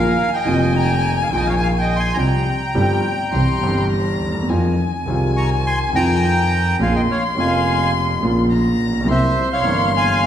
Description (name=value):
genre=tango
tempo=105 BPM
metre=4/4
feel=rubato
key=unclear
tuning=A4 = 440 Hz
part: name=bandoneon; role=melody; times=0.0-10.3 s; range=Bb4 to Db6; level=-21 LUFS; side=right 1 dB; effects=none
part: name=warm violin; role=second line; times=0.0-10.3 s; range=G5 to C6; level=-24 LUFS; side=left 5 dB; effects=none
part: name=warm concert grand piano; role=accompaniment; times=0.0-10.3 s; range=F1 to G4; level=-20 LUFS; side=right 1 dB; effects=none
part: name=warm double bass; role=bass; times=0.0-10.3 s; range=F1 to F2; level=-21 LUFS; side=equal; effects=none
room=wet recital hall reverb, RT60 1.7 s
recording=recorded in a church or concert hall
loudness=-16 LUFS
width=side -10 dB against mid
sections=0.0-10.3 A section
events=none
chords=0.0 Bbsus4; 2.2 Csus4; 3.3 C; 4.5 Fm7; 6.8 Bbm7; 9.1 C7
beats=0.47 1.03 1.60 | 2.18 2.75 3.33 3.91 | 4.49 5.07 5.65 6.22 | 6.80 7.37 7.94 8.51 | 9.08 9.65 10.22